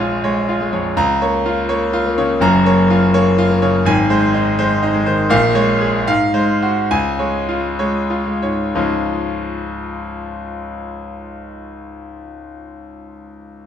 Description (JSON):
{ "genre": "classical, virtuoso piano study", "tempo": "61-84 BPM (dotted quarters)", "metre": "6/8", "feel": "rubato", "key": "Db major", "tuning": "A4 = 439 Hz", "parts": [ { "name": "clear concert grand piano", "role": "solo", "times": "0.0-13.7 s", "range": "Gb1 to Bb5", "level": "-15 LUFS", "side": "equal", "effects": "none" } ], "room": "wet recital hall reverb, RT60 1.7 s", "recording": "minimal, uncompressed stereo recording", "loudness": "-14 LUFS", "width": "side -9 dB against mid", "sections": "0.0-8.7 A section; 8.7-12.6 B section", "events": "slowing down 4.6-8.7", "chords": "0.0 Bbm7; 1.0 Bbm/Db; 2.4 Gbmaj7; 3.9 Ab; 5.3 Bbm7; 6.1 Ab6; 6.9 Db" }